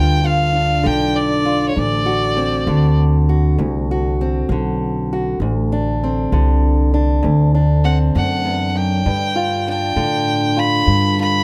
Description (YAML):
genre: acoustic country blues, solo or duo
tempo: 66 BPM (dotted quarters)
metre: 12/8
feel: straight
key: D mixolydian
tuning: A4 = 441 Hz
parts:
  - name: clear fiddle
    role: melody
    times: 0.0-11.4 s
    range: C#5 to B5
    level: -22 LUFS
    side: equal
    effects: none
  - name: fingerpicked old ladder-braced acoustic guitar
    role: accompaniment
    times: 0.0-11.4 s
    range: D2 to F#4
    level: -22 LUFS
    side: equal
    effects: none
  - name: upright bass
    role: bass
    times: 0.0-11.4 s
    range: A1 to A2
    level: -20 LUFS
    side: equal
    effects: none
room: moderate studio reverb, RT60 0.8 s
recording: none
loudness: -17 LUFS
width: mono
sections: 0.0-11.4 A section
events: none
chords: 0.0 G7; 1.8 D7; 9.0 G7